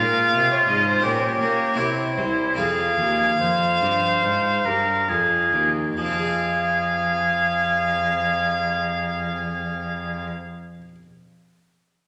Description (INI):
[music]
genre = classical, baroque-style sonata movement with continuo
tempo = 66-86 BPM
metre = 4/4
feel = rubato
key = F minor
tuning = A4 = 436 Hz
[part]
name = clear oboe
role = melody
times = 0.0-10.3 s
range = E4 to C5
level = -25 LUFS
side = equal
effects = none
[part]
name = rich violin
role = second line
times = 0.0-10.3 s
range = C5 to F5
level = -27 LUFS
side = equal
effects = none
[part]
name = harpsichord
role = accompaniment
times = 0.0-11.0 s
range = C2 to F5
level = -30 LUFS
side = equal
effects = none
[part]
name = rich cello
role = bass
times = 0.0-10.3 s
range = C2 to Bb3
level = -32 LUFS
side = equal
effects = none
[sound]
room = wet recital hall reverb, RT60 1.6 s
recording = none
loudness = -21 LUFS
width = mono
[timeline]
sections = 0.0-6.0 A section; 6.0-9.5 B section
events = slowing down 0.0-6.0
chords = 0.0 Fm; 1.0 Gdim/Bb; 1.8 C; 2.6 Fm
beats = 0.34 1.04 1.78 | 2.58 3.40 4.23 5.08 | 5.97 6.86 7.74 8.64